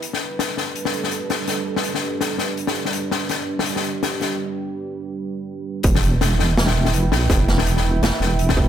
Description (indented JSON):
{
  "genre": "half-time drum and bass",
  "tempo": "165 BPM",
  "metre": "4/4",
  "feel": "swing 56% on 16ths, half-time",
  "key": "E minor",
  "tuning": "A4 = 436 Hz",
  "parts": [
    { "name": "dark analog pad", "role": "sustained chords", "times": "0.0-8.7 s", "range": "G3 to G5", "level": "-26 LUFS", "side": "right 4 dB", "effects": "chorus, sidechain pumping" },
    { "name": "street-band drum kit", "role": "drums", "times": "0.0-8.6 s", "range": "hi-hat, snare drum", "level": "-22 LUFS", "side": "left 4 dB", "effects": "none" },
    { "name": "deep soft wobble bass", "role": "bass", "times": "5.8-8.7 s", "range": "E1 to B1", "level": "-19 LUFS", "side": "right 1 dB", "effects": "chorus, tube saturation" },
    { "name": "electronic kick drum", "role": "drums", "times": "5.8-8.7 s", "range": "none", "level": "-18 LUFS", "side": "right 1 dB", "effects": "distortion" }
  ],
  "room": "light reverb, small room ambience",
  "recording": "none",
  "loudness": "-19 LUFS",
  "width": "side -10 dB against mid",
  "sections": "0.0-5.8 A section; 5.8-8.7 B section",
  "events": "break 4.4-5.8; drop 5.8-8.7",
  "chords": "0.0 G; 5.8 Em",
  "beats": "| 0.02 0.39 0.75 1.11 | 1.48 1.84 2.21 2.57 | 2.93 3.30 3.66 4.02 | 4.39 4.75 5.12 5.48 | 5.84 6.21 6.57 6.93 | 7.30 7.66 8.02 8.39"
}